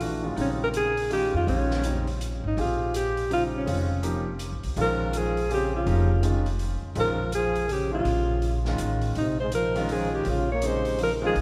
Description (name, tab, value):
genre	modal jazz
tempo	164 BPM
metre	3/4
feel	swing 63% on 8ths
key	Bb dorian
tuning	A4 = 440 Hz
part	mellow alto saxophone	melody	0.0-11.4 s	Db4 to Db5	-30 LUFS	equal	none
part	warm concert grand piano	accompaniment	0.0-11.3 s	Db3 to C5	-34 LUFS	equal	none
part	upright bass	bass	0.0-11.4 s	F1 to F2	-31 LUFS	equal	none
part	open jazz drum kit	drums	0.0-11.4 s	hi-hat, snare drum	-45 LUFS	equal	none
part	breathy trombone	second line	4.8-11.4 s	Bb2 to Bb3	-34 LUFS	equal	none
room	moderate church reverb, RT60 3.3 s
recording	recorded in a church or concert hall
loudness	-26 LUFS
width	mono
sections	0.0-11.4 A section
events	none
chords	0.0 Bbm9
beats	0.01 | 0.37 0.74 1.11 | 1.47 1.84 2.20 | 2.57 2.94 3.30 | 3.67 4.04 4.40 | 4.77 5.13 5.50 | 5.87 6.23 6.60 | 6.96 7.33 7.70 | 8.06 8.43 8.79 | 9.16 9.52 9.89 | 10.26 10.62 10.99 | 11.35